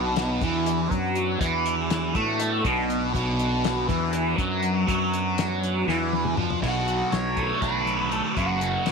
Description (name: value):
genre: psychedelic rock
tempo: 242 BPM (eighths)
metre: 7/8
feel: straight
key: B minor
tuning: A4 = 440 Hz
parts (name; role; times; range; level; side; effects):
- tonewheel organ; sustained chords; 0.0-8.9 s; B3 to A4; -37 LUFS; right 9 dB; slow rotary speaker
- thick fuzz guitar; riff; 0.0-8.9 s; F#2 to D4; -24 LUFS; equal; distortion, phaser
- fuzz fingered electric bass; bass; 0.0-8.9 s; F#1 to A2; -30 LUFS; equal; overdrive
- damped 70s drum kit; drums; 0.2-8.9 s; crash cymbal, hi-hat, kick drum, snare drum, toms; -30 LUFS; left 4 dB; none
- octave-fuzz lead guitar; melody; 6.6-8.9 s; F#4 to C#5; -28 LUFS; right 2 dB; distortion, tape echo
room: moderate plate reverb, RT60 2.3 s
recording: 1960s-style stereo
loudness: -22 LUFS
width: side -5 dB against mid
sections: 0.0-6.6 A section; 6.6-8.9 B section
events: drum fill 5.9-6.6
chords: 0.0 Bm; 6.6 Bm7; 8.4 F#sus4